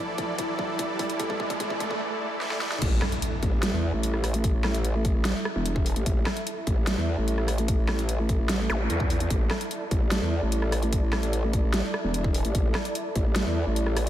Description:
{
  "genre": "heavy wobble dubstep",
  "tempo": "148 BPM",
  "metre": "4/4",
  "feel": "half-time",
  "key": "unclear",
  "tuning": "A4 = 441 Hz",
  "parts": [
    { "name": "mellow electric guitar", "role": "melody", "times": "0.0-2.0 s", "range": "E4 to A4", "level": "-37 LUFS", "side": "equal", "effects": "lush chorus, ping-pong delay" },
    { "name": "supersaw pad", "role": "sustained chords", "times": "0.0-14.1 s", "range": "A2 to E5", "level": "-33 LUFS", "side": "right 1 dB", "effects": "sidechain pumping, low-pass filter" },
    { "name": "riser, impact and zap", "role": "sound effects", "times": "0.0-4.4, 8.7-8.8 s", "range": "none", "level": "-34 LUFS", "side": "right 1 dB", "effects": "none" },
    { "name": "dubstep drum kit", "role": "drums", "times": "0.2-14.1 s", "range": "crash cymbal, hi-hat, rim click, snare drum", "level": "-30 LUFS", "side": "right 1 dB", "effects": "high-pass filter on hats, high-pass filter on snare, high-pass filter on cymbals" },
    { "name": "electronic kick drum", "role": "drums", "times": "0.2-13.2 s", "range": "none", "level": "-27 LUFS", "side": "equal", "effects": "none" },
    { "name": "growl bass", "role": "bass", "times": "2.8-14.1 s", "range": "E1 to E2", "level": "-26 LUFS", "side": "equal", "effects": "chorus, overdrive" }
  ],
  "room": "moderate cathedral reverb, RT60 5.1 s",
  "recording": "dreamy mix soaked in reverb, high-pass filter",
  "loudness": "-24 LUFS",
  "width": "side -12 dB against mid",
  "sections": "0.0-2.8 A section; 2.8-14.1 B section",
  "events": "build-up 0.0-2.8; drum fill 0.0-2.0, 2.4-2.8; riser 0.0-2.0; drop 2.8-14.1; impact 2.8-4.4",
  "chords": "0.0 A5"
}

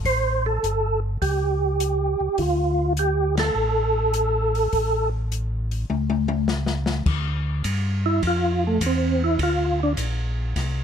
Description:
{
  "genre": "soul jazz organ trio",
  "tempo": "103 BPM",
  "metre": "4/4",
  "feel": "swing 69% on 8ths",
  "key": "D minor",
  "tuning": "A4 = 439 Hz",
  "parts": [
    { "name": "mellow tonewheel organ", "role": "bass", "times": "0.0-10.8 s", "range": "G1 to G2", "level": "-24 LUFS", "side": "equal", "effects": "slow rotary speaker" },
    { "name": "open jazz drum kit", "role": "drums", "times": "0.0-10.7 s", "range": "crash cymbal, hi-hat, kick drum, ride cymbal, snare drum, toms", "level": "-28 LUFS", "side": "left 4 dB", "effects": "none" },
    { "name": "percussive tonewheel organ", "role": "melody", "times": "0.1-9.9 s", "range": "A3 to C5", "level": "-22 LUFS", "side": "right 2 dB", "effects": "chorus vibrato, fast rotary speaker, plate reverb" }
  ],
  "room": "little or no reverb",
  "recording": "dark, warm production",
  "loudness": "-20 LUFS",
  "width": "side -8 dB against mid",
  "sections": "0.0-7.1 A section; 7.1-10.8 B section",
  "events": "band accent 3.3; drum fill 5.9-7.1; tonewheel organ solo 7.1-10.8",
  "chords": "0.0 A7; 2.4 Dm; 4.7 A; 7.1 Dm7"
}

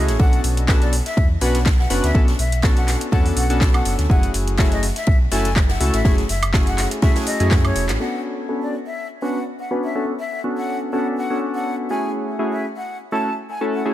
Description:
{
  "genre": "deep house",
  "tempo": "123 BPM",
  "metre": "4/4",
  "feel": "swing 55% on 16ths",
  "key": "B minor",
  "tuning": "A4 = 439 Hz",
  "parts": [
    { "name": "breathy jazz flute", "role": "melody", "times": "0.0-13.9 s", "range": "C#5 to A5", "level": "-28 LUFS", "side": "left 2 dB", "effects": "ping-pong delay" },
    { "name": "warm analog keys", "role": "stabs", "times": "0.0-13.9 s", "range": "A3 to B4", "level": "-23 LUFS", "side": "left 1 dB", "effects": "chorus, sidechain pumping, low-pass filter, ping-pong delay" },
    { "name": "sub bass with octave", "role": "bass", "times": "0.0-8.0 s", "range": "E1 to F#2", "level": "-21 LUFS", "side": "equal", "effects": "sidechain pumping" },
    { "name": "deep house drum kit", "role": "drums", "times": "0.1-8.0 s", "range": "handclaps, hi-hat, woodblock", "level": "-26 LUFS", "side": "equal", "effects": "overdrive, low-pass filter on hats, low-pass filter on snare, low-pass filter on perc, low-pass filter on room" },
    { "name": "street-band drum kit", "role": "drums", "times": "0.1-8.0 s", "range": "ride cymbal, snare drum", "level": "-33 LUFS", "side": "equal", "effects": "high-pass filter on cymbals, high-pass filter on snare, high-pass filter on room" },
    { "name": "electronic kick drum", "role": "drums", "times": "0.2-7.6 s", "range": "none", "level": "-16 LUFS", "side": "equal", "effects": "overdrive" }
  ],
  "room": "small room ambience",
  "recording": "none",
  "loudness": "-17 LUFS",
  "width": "side -13 dB against mid",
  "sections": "0.0-8.0 A section; 8.0-13.9 B section",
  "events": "drum fill 7.5-8.0; band accent 7.9; filter sweep on synth keys 8.0-13.9",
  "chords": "0.2 Bm9; 4.1 F#m9; 8.0 Bm9; 11.9 F#m9"
}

